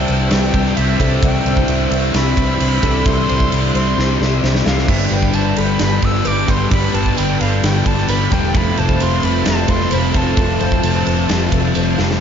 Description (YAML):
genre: rock, shoegaze and dream pop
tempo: 131 BPM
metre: 4/4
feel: straight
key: unclear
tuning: A4 = 440 Hz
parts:
  - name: breathy bright jazz flute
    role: melody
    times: 0.0-12.0 s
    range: E5 to E6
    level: -24 LUFS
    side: equal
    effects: diffuse ambient delay
  - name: lush unison pad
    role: sustained chords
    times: 0.0-12.2 s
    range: C4 to A5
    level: -26 LUFS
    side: right 1 dB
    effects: chorus
  - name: picked twelve-string acoustic guitar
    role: arpeggios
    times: 0.0-12.2 s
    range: G4 to C5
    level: -27 LUFS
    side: equal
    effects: analog chorus, diffuse ambient delay
  - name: electric guitar through a small old amp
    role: riff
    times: 0.0-12.2 s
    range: F2 to G4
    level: -24 LUFS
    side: right 7 dB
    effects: reverse reverb
  - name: thick fuzz guitar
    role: riff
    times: 0.0-12.2 s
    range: F2 to C4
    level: -20 LUFS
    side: left 8 dB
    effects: distortion, analog chorus
  - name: vintage muted fingered electric bass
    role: bass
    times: 0.0-12.2 s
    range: E1 to C2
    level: -19 LUFS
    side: right 1 dB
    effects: none
  - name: huge arena drum kit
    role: drums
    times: 0.1-12.2 s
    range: crash cymbal, kick drum, ride cymbal, snare drum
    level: -19 LUFS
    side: right 1 dB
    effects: none
  - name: tambourine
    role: percussion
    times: 5.3-11.9 s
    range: none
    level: -32 LUFS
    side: right 8 dB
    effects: none
room: moderate huge ambient reverb, RT60 7.9 s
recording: dreamy mix soaked in reverb, nothing above 7.5 kHz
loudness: -13 LUFS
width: side -8 dB against mid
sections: 0.0-12.2 A section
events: drum fill 4.0-4.9, 12.0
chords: 0.0 Cadd9; 4.9 G; 8.5 F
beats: 0.31 0.77 | 1.23 1.68 2.14 2.60 | 3.06 3.51 3.97 4.43 | 4.89 5.34 5.80 6.26 | 6.72 7.17 7.63 8.09 | 8.55 9.00 9.46 9.92 | 10.38 10.84 11.29 11.75